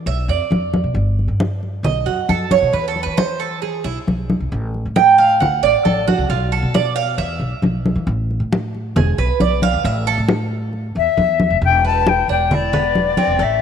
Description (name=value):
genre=latin, Cuban son and guajira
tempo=135 BPM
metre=4/4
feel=straight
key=unclear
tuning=A4 = 440 Hz
part: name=upright bass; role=bass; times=0.0-13.6 s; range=E1 to E3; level=-21 LUFS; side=equal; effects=none
part: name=Cuban tres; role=arpeggios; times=0.1-13.6 s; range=A3 to G5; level=-18 LUFS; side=right 6 dB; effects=none
part: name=congas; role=percussion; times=0.1-13.6 s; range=none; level=-20 LUFS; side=left 1 dB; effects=none
part: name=jazz flute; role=melody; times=11.0-13.6 s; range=D5 to A5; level=-16 LUFS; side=left 10 dB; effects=none
room=wet plate reverb, RT60 2.5 s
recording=1960s-style stereo with parts hard left and right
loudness=-15 LUFS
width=side -8 dB against mid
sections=0.0-11.6 A section; 11.6-13.6 B section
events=Cuban tres solo 0.0-11.6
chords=0.1 Bdim; 1.0 N.C.; 1.8 B5; 2.7 E5; 4.5 Fadd9/A; 5.4 D5; 6.3 Bm7b5; 7.2 E5; 8.1 N.C.; 9.0 E5; 9.8 A5; 11.6 E5